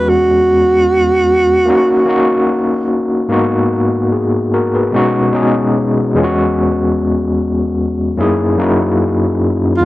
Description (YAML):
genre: soul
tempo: 74 BPM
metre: 4/4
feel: straight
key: unclear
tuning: A4 = 439 Hz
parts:
  - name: growling alto saxophone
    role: melody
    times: 0.0-2.9, 9.8 s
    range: E#4 to B4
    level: -12 LUFS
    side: right 1 dB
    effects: none
  - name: overdriven tine electric piano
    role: accompaniment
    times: 0.0-9.8 s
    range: E2 to B4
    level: -12 LUFS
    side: left 1 dB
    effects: medium tremolo
room: moderate booth ambience, RT60 0.2 s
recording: dry, close 1970s-style studio recording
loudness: -11 LUFS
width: side -17 dB against mid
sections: 0.0-9.8 A section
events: none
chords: 0.0 E69; 1.7 D#m7; 3.3 G#m9; 4.9 B69; 6.2 E69; 8.2 F#13